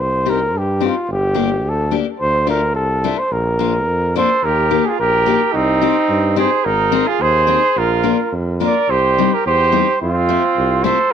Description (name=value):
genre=alpine folk, alpine dance band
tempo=108 BPM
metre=2/4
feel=rubato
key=Bb major, Eb major from 4.4 s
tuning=A4 = 440 Hz
part: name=dark trumpet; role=melody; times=0.0-11.1 s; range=Eb4 to D5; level=-17 LUFS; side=equal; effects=tape echo
part: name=clear tuba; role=bass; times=0.0-10.9 s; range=G1 to G2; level=-21 LUFS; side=right 2 dB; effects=none
part: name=fingerpicked steel-string acoustic guitar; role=accompaniment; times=0.3-11.0 s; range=G3 to Ab4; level=-20 LUFS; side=left 12 dB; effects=none
part: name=clear trumpet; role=second line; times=4.2-11.1 s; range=C4 to Bb4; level=-20 LUFS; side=right 13 dB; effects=none
room=moderate spring reverb, RT60 1.1 s, studio reverb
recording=1960s-style stereo with parts hard left and right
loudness=-14 LUFS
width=side -8 dB against mid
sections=0.0-4.4 A section; 4.4-11.1 B section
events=none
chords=0.0 Cm; 1.1 Gm; 2.2 Dm; 3.3 Bb; 4.4 Eb; 5.6 Cm; 6.7 Ab; 7.8 Bb; 8.9 Cm; 10.0 F